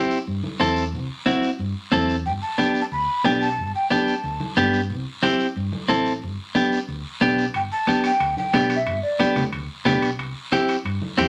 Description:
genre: latin, cumbia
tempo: 182 BPM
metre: 4/4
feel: straight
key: G major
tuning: A4 = 440 Hz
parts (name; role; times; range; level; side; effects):
- clean electric guitar; accompaniment; 0.0-11.3 s; B3 to A4; -22 LUFS; equal; none
- guiro; percussion; 0.1-11.3 s; none; -40 LUFS; equal; none
- hollow-body short-scale fingered electric bass; bass; 0.3-11.3 s; G1 to G2; -32 LUFS; equal; none
- congas; percussion; 0.4-11.3 s; none; -34 LUFS; equal; none
- breathy mellow jazz flute; melody; 2.3-4.5, 7.6-9.3 s; D5 to B5; -26 LUFS; equal; none
- timbales; percussion; 7.5-11.3 s; none; -34 LUFS; equal; none
room: wet studio reverb, RT60 0.5 s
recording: none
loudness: -22 LUFS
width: mono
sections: 0.0-7.5 A section; 7.5-11.3 A section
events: none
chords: 0.0 C; 2.3 Gadd9; 4.9 C; 6.2 G; 10.2 C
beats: 0.27 0.60 | 0.93 1.26 1.59 1.92 | 2.25 2.58 2.91 3.25 | 3.58 3.91 4.24 4.57 | 4.90 5.23 5.56 5.89 | 6.22 6.55 6.88 7.21 | 7.54 7.87 8.20 8.54 | 8.87 9.20 9.53 9.86 | 10.19 10.52 10.85 11.18

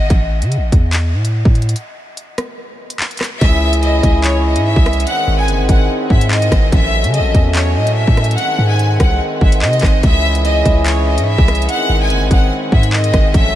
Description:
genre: hip hop, drill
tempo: 145 BPM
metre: 4/4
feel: half-time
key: unclear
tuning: A4 = 441 Hz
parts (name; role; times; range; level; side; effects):
- clear studio violin section; melody; 0.0-0.1, 3.4-13.6 s; C#5 to G#5; -19 LUFS; equal; analog delay
- long sustained 808-style bass; bass; 0.0-13.6 s; F#1 to C#3; -15 LUFS; equal; none
- drill drum kit; drums; 0.1-13.4 s; handclaps, hi-hat, kick drum, rim click; -16 LUFS; equal; vintage 12-bit sampler grit
- pedal harmonium; sustained chords; 3.4-13.6 s; D#3 to G#4; -20 LUFS; left 1 dB; none
room: light reverb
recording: none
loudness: -11 LUFS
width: side -12 dB against mid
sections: 0.0-13.6 A section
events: break 0.1-3.4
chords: 0.1 A5; 1.8 N.C.; 3.4 C#m; 5.1 G#; 6.7 A6; 8.4 G#; 10.0 C#m; 11.7 G#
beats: | 0.10 0.52 0.93 1.34 | 1.76 2.17 2.58 3.00 | 3.41 3.83 4.24 4.65 | 5.07 5.48 5.90 6.31 | 6.72 7.14 7.55 7.96 | 8.38 8.79 9.21 9.62 | 10.03 10.45 10.86 11.28 | 11.69 12.10 12.52 12.93 | 13.34

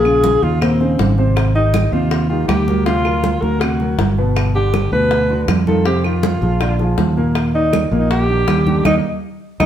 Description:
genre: Afro-Cuban jazz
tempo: 160 BPM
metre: 4/4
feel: straight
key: Eb major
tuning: A4 = 443 Hz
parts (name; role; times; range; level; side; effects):
- breathy alto saxophone; melody; 0.0-9.7 s; C4 to B4; -19 LUFS; equal; slapback echo, plate reverb
- warm concert grand piano; accompaniment; 0.0-9.7 s; Bb2 to F#5; -21 LUFS; equal; none
- fingered electric bass; bass; 0.0-9.7 s; G1 to F2; -17 LUFS; equal; none
- bongos; percussion; 0.1-9.7 s; none; -26 LUFS; left 5 dB; none
- claves; percussion; 0.1-9.7 s; none; -30 LUFS; right 4 dB; none
- congas; percussion; 0.1-9.7 s; none; -22 LUFS; right 3 dB; none
room: wet studio reverb, RT60 1.0 s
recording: heard from further back in the room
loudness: -13 LUFS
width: side -10 dB against mid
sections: 0.0-9.7 A section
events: band accent 8.9-9.7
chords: 0.0 Bbm7; 0.6 Eb5; 1.4 Abmaj7; 2.9 D7alt; 4.4 Gmaj7; 5.9 Fm7; 6.6 Bb7; 7.4 Ebmaj7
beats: 0.24 0.61 0.99 | 1.36 1.74 2.11 2.49 | 2.86 3.24 3.61 3.98 | 4.36 4.73 5.11 5.48 | 5.86 6.23 6.61 6.98 | 7.36 7.73 8.10 8.48 | 8.85 9.23 9.60

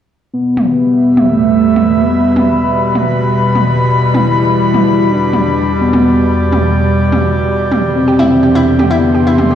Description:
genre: melodic techno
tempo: 126 BPM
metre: 4/4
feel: straight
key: E minor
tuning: A4 = 441 Hz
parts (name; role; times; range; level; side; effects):
- soft octave-layered synth lead; melody; 0.3-9.5 s; A3 to E4; -13 LUFS; equal; chorus, cassette tape, ping-pong delay
- evolving wavetable pad; sustained chords; 0.3-9.6 s; E2 to G3; -15 LUFS; equal; chorus, built-in reverb
- airy breathy pad; texture; 0.8-9.6 s; E3 to C6; -16 LUFS; equal; chorus
- electronic toms; drums; 0.6-9.5 s; none; -17 LUFS; right 1 dB; low-pass filter on toms
- analog pluck; arpeggios; 8.1-9.6 s; E4 to G4; -17 LUFS; equal; chorus, ping-pong delay
room: moderate digital room reverb, RT60 1.1 s, digital ambience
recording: played on a big sound system in a bare room, stone room reverb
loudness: -9 LUFS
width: side -9 dB against mid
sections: 0.3-9.6 A section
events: none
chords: 0.3 Em; 8.0 Cadd9/E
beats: | 0.33 0.81 1.29 1.76 | 2.24 2.71 3.19 3.67 | 4.14 4.62 5.10 5.57 | 6.05 6.53 7.00 7.48 | 7.95 8.43 8.91 9.38

